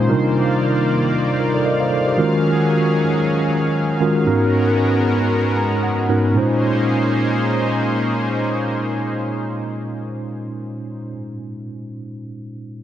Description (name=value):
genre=amapiano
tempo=115 BPM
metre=4/4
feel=swing 55% on 16ths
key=Bb minor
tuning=A4 = 439 Hz
part: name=mellow tine electric piano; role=accompaniment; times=0.0-12.8 s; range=Ab2 to Bb5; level=-18 LUFS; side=right 1 dB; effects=medium stereo tremolo
part: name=lush unison pad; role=sustained chords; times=0.0-11.1 s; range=Eb3 to F5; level=-22 LUFS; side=left 1 dB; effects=chorus
room=light reverb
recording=none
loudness=-16 LUFS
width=side -11 dB against mid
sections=0.0-6.3 A section; 6.3-10.5 B section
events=tine electric piano fill 5.3-6.3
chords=0.1 Cm11; 2.2 Ebm11; 4.3 Abm11; 6.3 Bbm11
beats=| 0.09 0.61 1.13 1.65 | 2.17 2.70 3.22 3.74 | 4.26 4.78 5.30 5.83 | 6.35 6.87 7.39 7.91 | 8.44 8.96 9.48 10.00